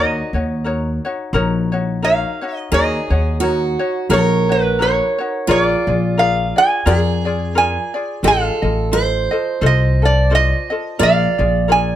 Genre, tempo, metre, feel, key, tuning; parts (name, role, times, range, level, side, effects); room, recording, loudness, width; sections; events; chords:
Hawaiian; 87 BPM; 4/4; swing 57% on 8ths; Eb minor; A4 = 438 Hz
lap resonator guitar; melody; 0.0-12.0 s; Cb5 to Ab5; -18 LUFS; right 2 dB; plate reverb
ukulele; accompaniment; 0.0-12.0 s; Eb4 to Eb5; -22 LUFS; left 3 dB
upright bass; bass; 0.0-12.0 s; A1 to F2; -18 LUFS; left 1 dB
picked steel-string acoustic guitar; second line; 2.7-12.0 s; F4 to D5; -21 LUFS; right 6 dB
light reverb; -14 LUFS; side -11 dB against mid
0.0-2.7 A section; 2.7-12.0 A section
0.0 Ebm7; 5.5 Bb7; 8.2 F7/A; 11.0 Bb7